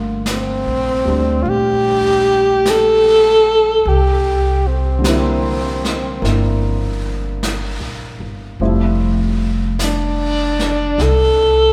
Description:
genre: jazz ballad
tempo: 50 BPM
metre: 4/4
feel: swing 66% on 8ths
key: unclear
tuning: A4 = 441 Hz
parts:
  - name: warm grand piano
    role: accompaniment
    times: 0.0-11.7 s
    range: D3 to F#5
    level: -24 LUFS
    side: equal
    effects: none
  - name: upright bass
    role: bass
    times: 0.0-11.7 s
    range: F1 to D2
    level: -22 LUFS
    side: equal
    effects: none
  - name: breathy alto saxophone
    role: melody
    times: 0.3-11.7 s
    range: C4 to A4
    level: -17 LUFS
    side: equal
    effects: none
  - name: vintage brush drum kit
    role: drums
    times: 0.3-11.7 s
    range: brushed snare drum, hi-hat, snare drum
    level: -29 LUFS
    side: equal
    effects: none
room: wet church reverb, RT60 2.8 s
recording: recorded in a church or concert hall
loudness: -16 LUFS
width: mono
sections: 0.0-11.7 A section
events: none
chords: 0.0 Gm9; 3.9 C7; 8.6 Fmaj7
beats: 0.26 1.46 2.66 | 3.85 5.04 6.23 7.42 | 8.60 9.79 10.98

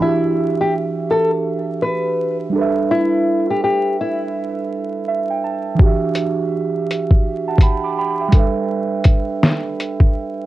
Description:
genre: lo-fi hip hop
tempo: 83 BPM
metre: 4/4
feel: swing 62% on 16ths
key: E minor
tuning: A4 = 445 Hz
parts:
  - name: nylon-string guitar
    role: melody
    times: 0.0-5.3 s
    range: E4 to B4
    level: -19 LUFS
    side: left 2 dB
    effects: low-pass filter, cassette tape
  - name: muted felt-like synth keys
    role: accompaniment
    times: 0.0-10.5 s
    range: E3 to D6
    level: -20 LUFS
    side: right 4 dB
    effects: chorus, cassette tape, low-pass filter
  - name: lo-fi sampler-style drum kit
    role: drums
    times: 5.8-10.1 s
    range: hi-hat, kick drum, snare drum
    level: -13 LUFS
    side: equal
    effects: cassette tape
room: moderate studio reverb, RT60 0.7 s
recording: home recording on cassette, vinyl crackle, nothing above 10.3 kHz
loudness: -16 LUFS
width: side -15 dB against mid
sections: 0.0-10.5 A section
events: synth keys fill 4.7-5.8; break 10.1-10.5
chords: 0.0 Em7; 2.5 G69; 5.8 Em7; 8.3 G69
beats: | 0.01 0.74 1.46 2.18 | 2.90 3.63 4.35 5.07 | 5.80 6.52 7.24 7.96 | 8.69 9.41 10.13

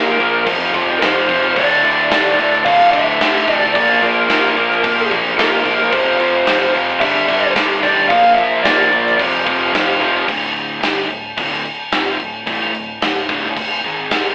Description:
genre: hard rock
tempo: 110 BPM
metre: 4/4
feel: straight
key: D minor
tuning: A4 = 440 Hz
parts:
  - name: lead guitar through a small cranked amp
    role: melody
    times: 0.0-9.1 s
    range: Bb4 to F5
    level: -15 LUFS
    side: equal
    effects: overdrive
  - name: crunchy overdriven guitar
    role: riff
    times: 0.0-14.3 s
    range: D2 to Bb3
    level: -21 LUFS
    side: equal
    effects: none
  - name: high-gain distorted guitar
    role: riff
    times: 0.0-10.3 s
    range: D2 to Bb3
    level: -17 LUFS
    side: equal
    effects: distortion
  - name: fingered electric bass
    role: bass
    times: 0.0-14.3 s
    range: D1 to Bb1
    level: -39 LUFS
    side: equal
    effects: none
  - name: gated 80s drum kit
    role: drums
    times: 0.2-14.2 s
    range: crash cymbal, kick drum, snare drum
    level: -17 LUFS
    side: equal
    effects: none
room: moderate large studio reverb, RT60 1.4 s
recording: band playing live in one room, telephone sound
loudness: -12 LUFS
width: side -34 dB against mid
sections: 0.0-10.3 A section; 10.3-14.3 B section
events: none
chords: 0.5 F5; 1.6 D5; 3.7 Bb5; 5.9 F5; 7.0 G5; 8.1 Bb; 9.2 F5; 10.3 Dm; 13.8 G#5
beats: 0.46 1.01 | 1.56 2.11 2.65 3.20 | 3.74 4.29 4.83 5.38 | 5.92 6.47 7.01 7.56 | 8.10 8.64 9.19 9.73 | 10.28 10.83 11.37 11.92 | 12.47 13.01 13.56 14.11

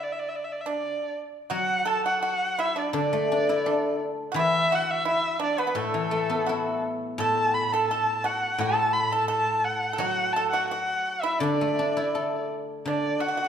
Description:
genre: chinese traditional, Chinese chamber ensemble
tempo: 85 BPM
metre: 2/4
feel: rubato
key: D gong mode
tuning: A4 = 440 Hz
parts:
  - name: warm erhu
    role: melody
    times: 0.0-13.5 s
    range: A4 to B5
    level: -26 LUFS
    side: equal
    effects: none
  - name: guzheng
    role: accompaniment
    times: 0.0-13.5 s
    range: A2 to A4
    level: -30 LUFS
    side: left 3 dB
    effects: none
  - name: pipa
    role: second line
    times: 0.7-13.5 s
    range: A3 to A4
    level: -29 LUFS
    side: right 3 dB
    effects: none
room: wet recital hall reverb, RT60 1.8 s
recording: minimal, uncompressed stereo recording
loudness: -23 LUFS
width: side -8 dB against mid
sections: 0.0-1.5 A section; 1.5-12.9 B section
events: none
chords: none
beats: | 0.08 0.80 | 1.51 2.23 | 2.95 3.65 | 4.36 5.06 | 5.76 6.47 | 7.20 7.90 | 8.61 9.31 | 10.01 10.71 | 11.42 12.14 | 12.86

